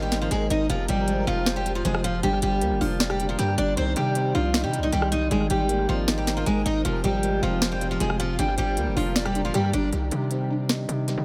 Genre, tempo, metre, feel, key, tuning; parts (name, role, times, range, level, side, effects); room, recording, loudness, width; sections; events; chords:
hip hop, trap; 156 BPM; 4/4; half-time; C minor; A4 = 439 Hz
picked steel-string acoustic guitar; melody; 0.0-9.9 s; F3 to Eb5; -28 LUFS; equal; tape echo
dark grand piano; accompaniment; 0.0-11.2 s; C3 to D5; -32 LUFS; equal; low-pass filter, tape echo
granular cloud pad; sustained chords; 0.0-9.9 s; Eb3 to C6; -39 LUFS; equal
hard-hitting 808-style bass; bass; 0.0-11.2 s; F1 to C3; -30 LUFS; equal
trap drum kit; drums; 0.1-11.2 s; hi-hat, rim click, snare drum; -31 LUFS; equal; tape echo
little or no reverb; echo-heavy mix; -24 LUFS; mono
0.0-9.9 A section; 9.9-11.2 B section
filter sweep on grand piano 9.9-11.2
0.0 Abadd9; 0.7 Fm; 2.2 Gm; 3.8 Cmadd9; 5.3 Abadd9; 6.8 Fm; 8.4 Gm; 9.9 Cmadd9